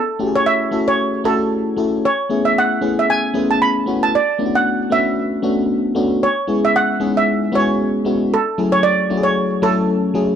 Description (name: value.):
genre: pop.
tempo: 114 BPM.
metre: 4/4.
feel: swing 54% on 16ths.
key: unclear.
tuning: A4 = 440 Hz.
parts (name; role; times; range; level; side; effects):
steel pan; melody; 0.0-10.1 s; A4 to B5; -18 LUFS; right 3 dB; none.
FM electric piano; accompaniment; 0.2-10.4 s; F#3 to A4; -18 LUFS; left 2 dB; lush chorus.
room: light reverb.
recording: dry, close 1970s-style studio recording.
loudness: -15 LUFS.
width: side -8 dB against mid.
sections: 0.0-10.4 A section.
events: none.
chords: 0.0 F#m7; 2.0 Amaj7; 4.1 Bm7; 6.2 C#m7; 8.3 F#m7.